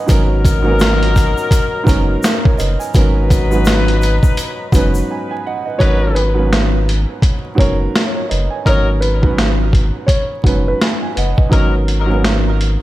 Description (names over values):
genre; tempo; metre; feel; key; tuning
hip hop, boom-bap hip-hop; 84 BPM; 4/4; swing 61% on 16ths; G# minor; A4 = 439 Hz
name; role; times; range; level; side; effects
dark grand piano; accompaniment; 0.0-12.8 s; G#2 to B5; -20 LUFS; right 3 dB; high-pass filter, low-pass filter
warm horn section; stabs; 0.1-11.7 s; F#3 to B4; -22 LUFS; left 4 dB; high-pass filter, low-pass filter, ping-pong delay
soft dub sub bass; bass; 0.1-12.8 s; F#1 to G#1; -16 LUFS; equal; none
boom bap sampler-style drum kit; drums; 0.1-12.8 s; hi-hat, kick drum, snare drum; -15 LUFS; equal; none
tube shaker; percussion; 0.1-5.1 s; none; -35 LUFS; left 4 dB; none
dark upright piano; melody; 5.8-10.8 s; B4 to C#5; -23 LUFS; left 1 dB; high-pass filter, low-pass filter, ping-pong delay
room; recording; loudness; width
small room ambience; vinyl crackle; -12 LUFS; side -16 dB against mid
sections
0.0-5.8 A section; 5.8-12.8 B section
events
break 5.1-5.8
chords
0.0 G#m11